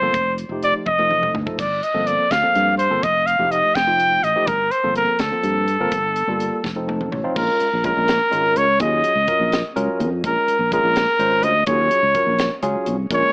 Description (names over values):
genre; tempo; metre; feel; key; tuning
electric jazz fusion; 83 BPM (dotted quarters); 6/8; straight; Bb minor from 7.4 s; A4 = 440 Hz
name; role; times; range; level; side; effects
clear trumpet; melody; 0.0-13.3 s; A4 to G5; -17 LUFS; equal; none
barky tine electric piano; accompaniment; 0.0-13.3 s; F3 to A5; -25 LUFS; equal; medium stereo tremolo
fretless electric bass; bass; 0.0-13.2 s; F1 to G2; -25 LUFS; equal; analog chorus
crisp fusion drum kit; drums; 0.1-13.2 s; crash cymbal, hi-hat, kick drum, snare drum, toms; -28 LUFS; equal; none
brassy analog pad; sustained chords; 13.1-13.3 s; Ab3 to Db4; -26 LUFS; right 1 dB; wide subtle chorus
room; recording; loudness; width
light reverb, small room ambience; AM radio sound; -16 LUFS; side -32 dB against mid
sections
0.0-7.4 A section; 7.4-13.3 B section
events
drum fill 0.9-1.6, 6.6-7.4; tine electric piano fill 6.6-7.4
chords
0.1 F9; 1.6 Gm11; 3.0 F9; 4.5 Gm11; 5.9 Gm9; 6.6 F7; 7.4 Bbm7; 8.8 Ebm11; 10.2 Bbm7; 11.7 Ebm11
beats
| 0.14 0.86 | 1.59 2.31 | 3.03 3.75 | 4.48 5.20 | 5.92 6.64 | 7.36 8.08 | 8.80 9.52 | 10.24 10.96 | 11.68 12.39 | 13.11